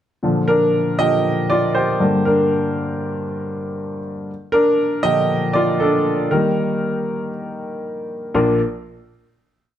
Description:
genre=piano-driven pop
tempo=118 BPM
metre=4/4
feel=straight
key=Bb major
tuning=A4 = 439 Hz
part: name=clear grand piano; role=solo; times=0.2-8.6 s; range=Bb1 to Eb5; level=-17 LUFS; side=equal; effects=none
room=moderate large studio reverb, RT60 1.1 s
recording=dark, warm production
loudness=-16 LUFS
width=side -10 dB against mid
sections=0.2-8.3 verse; 8.3-9.8 final chord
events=grand piano solo 0.2-8.3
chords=0.2 Bb; 2.0 Gm; 4.3 Bb; 6.3 Eb; 8.3 Bb

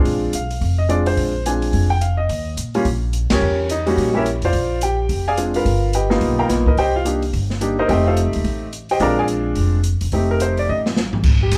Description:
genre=jazz piano trio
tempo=214 BPM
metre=4/4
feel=swing 61% on 8ths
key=Bb mixolydian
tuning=A4 = 440 Hz
part: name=warm concert grand piano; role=melody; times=0.0-11.6 s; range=G3 to A#5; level=-22 LUFS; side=equal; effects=none
part: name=upright bass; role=bass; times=0.0-11.6 s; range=E1 to Bb2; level=-23 LUFS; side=equal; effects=none
part: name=open jazz drum kit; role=drums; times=0.1-11.6 s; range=crash cymbal, hi-hat, kick drum, ride cymbal, snare drum, toms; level=-25 LUFS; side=equal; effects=none
room=light reverb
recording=band playing live in one room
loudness=-19 LUFS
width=mono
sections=0.0-11.2 A section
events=band accent 3.3; drum fill 10.7-11.2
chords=0.1 Bb9; 2.3 Eb7(no3); 3.4 Edim7; 4.5 Bb9; 5.7 G7alt; 6.8 Cm7; 7.9 F9; 9.0 Bb9; 10.1 F9

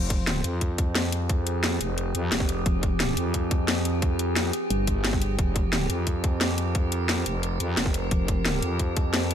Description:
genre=dark technical drum and bass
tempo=176 BPM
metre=4/4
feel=straight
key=F minor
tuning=A4 = 439 Hz
part: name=metallic inharmonic drone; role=sustained chords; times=0.0-9.3 s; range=F3 to Bb4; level=-31 LUFS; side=right 1 dB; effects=chorus, built-in reverb, sidechain pumping
part: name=metallic wobble bass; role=bass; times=0.0-0.4, 2.7-5.9, 8.1-8.6 s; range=F1 to G1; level=-27 LUFS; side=equal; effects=chorus
part: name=drum and bass drum kit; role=drums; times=0.1-9.3 s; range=hi-hat, snare drum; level=-27 LUFS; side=left 1 dB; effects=overdrive
part: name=electronic kick drum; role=drums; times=0.1-9.0 s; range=none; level=-26 LUFS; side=equal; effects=overdrive
part: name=growling FM bass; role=bass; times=0.4-9.3 s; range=F1 to F2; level=-28 LUFS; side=equal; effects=none
room=digital ambience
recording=none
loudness=-23 LUFS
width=side -9 dB against mid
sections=0.0-9.3 A section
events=none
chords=0.0 Fmadd9

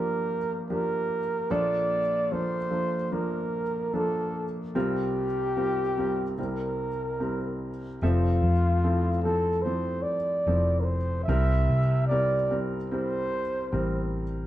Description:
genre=folk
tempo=74 BPM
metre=4/4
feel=straight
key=unclear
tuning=A4 = 438 Hz
part: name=breathy flugelhorn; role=melody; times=0.0-14.1 s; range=F4 to E5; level=-28 LUFS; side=right 1 dB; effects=slapback echo, plate reverb
part: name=warm upright piano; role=accompaniment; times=0.0-14.5 s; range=F1 to E5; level=-30 LUFS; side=equal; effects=none
part: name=hollow-body short-scale fingered electric bass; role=bass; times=8.0-14.5 s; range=F1 to C3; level=-26 LUFS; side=left 1 dB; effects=none
room=wet studio reverb, RT60 0.6 s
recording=heard from further back in the room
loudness=-24 LUFS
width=side -13 dB against mid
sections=0.0-14.5 A section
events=none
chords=0.0 Gm7; 1.5 Bbmaj7; 4.8 C7sus4; 6.4 C7; 8.0 Fmaj7; 11.3 C7

